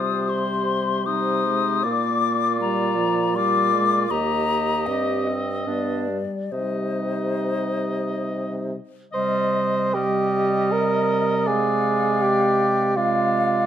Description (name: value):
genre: classical, slow romantic movement for wind quintet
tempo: 68-81 BPM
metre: 3/4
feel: rubato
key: C minor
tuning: A4 = 440 Hz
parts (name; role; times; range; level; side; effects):
- hollow concert flute; melody; 0.0-13.7 s; C5 to Eb6; -26 LUFS; left 8 dB; none
- warm oboe; second line; 0.0-13.7 s; C5 to Eb5; -27 LUFS; left 2 dB; none
- clear clarinet; accompaniment; 0.0-13.7 s; G3 to G4; -28 LUFS; right 8 dB; none
- mellow French horn; accompaniment; 0.0-13.7 s; C3 to C4; -29 LUFS; left 1 dB; none
- mellow bassoon; bass; 0.0-13.7 s; Eb2 to C5; -24 LUFS; right 2 dB; none
room: moderate recital hall reverb, RT60 1.6 s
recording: close, detailed microphones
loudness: -20 LUFS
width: side -10 dB against mid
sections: 0.0-9.1 A section; 9.1-13.7 A section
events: none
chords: 0.0 Cm; 1.8 Bb; 4.1 Eb; 4.9 Cm/G; 5.7 G; 6.5 Cm; 11.5 Dm7b5/C